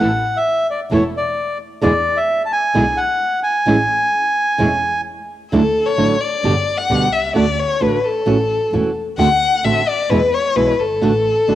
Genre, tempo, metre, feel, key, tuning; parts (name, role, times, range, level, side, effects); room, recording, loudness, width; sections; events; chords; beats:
tango; 131 BPM; 4/4; rubato; A major, D major from 5.5 s; A4 = 440 Hz
bandoneon; melody; 0.0-5.0 s; C#5 to A5; -17 LUFS; equal; cassette tape
flamenco guitar; accompaniment; 0.0-11.6 s; B2 to G4; -19 LUFS; right 3 dB
warm studio string section; stabs; 0.0-4.8 s; A3 to A4; -29 LUFS; equal
dark double bass; bass; 0.0-11.6 s; E1 to E2; -24 LUFS; equal
rich violin; second line; 5.5-11.6 s; A4 to F#5; -16 LUFS; left 3 dB
moderate lush hall reverb, RT60 2.3 s; home recording on cassette; -14 LUFS; side -13 dB against mid
0.0-5.5 A section; 5.5-11.6 B section
violin solo 5.5-11.6
0.0 Asus2; 1.8 E7; 3.7 Amaj7; 5.5 Dadd9; 6.4 G; 7.4 D; 8.3 A6; 9.2 D7; 10.1 E; 11.0 D/A
| 0.00 0.46 0.91 1.37 | 1.82 2.28 2.74 3.20 | 3.66 4.12 4.59 5.05 | 5.52 5.98 6.44 6.90 | 7.36 7.81 8.27 8.72 | 9.18 9.64 10.10 10.56 | 11.02 11.48